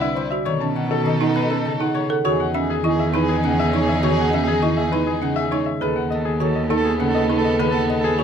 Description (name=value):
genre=classical, minimalist pattern music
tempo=101 BPM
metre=3/4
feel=straight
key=E major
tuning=A4 = 443 Hz
part: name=clear grand piano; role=melody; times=0.0-8.2 s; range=G#4 to A5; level=-24 LUFS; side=left 9 dB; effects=none
part: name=clear soprano saxophone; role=second line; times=0.0-8.2 s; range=D#4 to A4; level=-27 LUFS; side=right 5 dB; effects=none
part: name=concert harp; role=accompaniment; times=0.0-8.2 s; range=C3 to C#4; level=-26 LUFS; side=left 2 dB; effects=none
part: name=rich chamber violin section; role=sustained chords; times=0.0-8.2 s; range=B3 to B4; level=-28 LUFS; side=left 3 dB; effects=none
part: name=folk marimba with medium mallets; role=arpeggios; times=0.0-8.2 s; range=C#4 to A4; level=-24 LUFS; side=right 7 dB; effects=none
part: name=warm cello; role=bass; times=0.0-8.2 s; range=C2 to B2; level=-24 LUFS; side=right 3 dB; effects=none
room=little or no reverb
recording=close, detailed microphones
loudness=-18 LUFS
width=side -7 dB against mid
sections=0.0-2.2 A section; 2.2-8.2 B section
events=none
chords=0.5 B7; 2.2 Emaj9; 5.8 B9/D#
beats=| 0.47 1.06 1.65 | 2.25 2.84 3.44 | 4.03 4.62 5.22 | 5.81 6.41 7.00 | 7.59 8.19